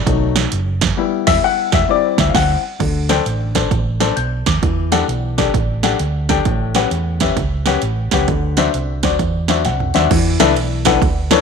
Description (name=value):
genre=uptempo gospel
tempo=132 BPM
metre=4/4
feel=swing 64% on 8ths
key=unclear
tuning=A4 = 441 Hz
part: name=clear grand piano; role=accompaniment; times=0.0-11.4 s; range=A2 to G6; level=-18 LUFS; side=left 12 dB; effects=none
part: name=hollow-body short-scale fingered electric bass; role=bass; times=0.1-11.4 s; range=E1 to E2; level=-19 LUFS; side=right 1 dB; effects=none
part: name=punchy analog drum machine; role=drums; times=0.1-11.4 s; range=crash cymbal, hi-hat, kick drum, ride cymbal, snare drum, toms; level=-18 LUFS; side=right 6 dB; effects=none
room=light reverb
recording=1960s-style stereo with parts hard left and right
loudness=-14 LUFS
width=side -6 dB against mid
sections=0.0-2.8 A section; 2.8-10.1 B section; 10.1-11.4 C section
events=grand piano solo 0.0-2.8; band accent 1.0-2.8; grand piano fill 9.2-10.1; drum fill 9.7-10.1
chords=0.1 B7; 1.0 Em; 1.9 D9sus4; 2.8 D7sus4; 4.6 Em11; 6.5 A13; 8.3 D9; 10.1 E7sus4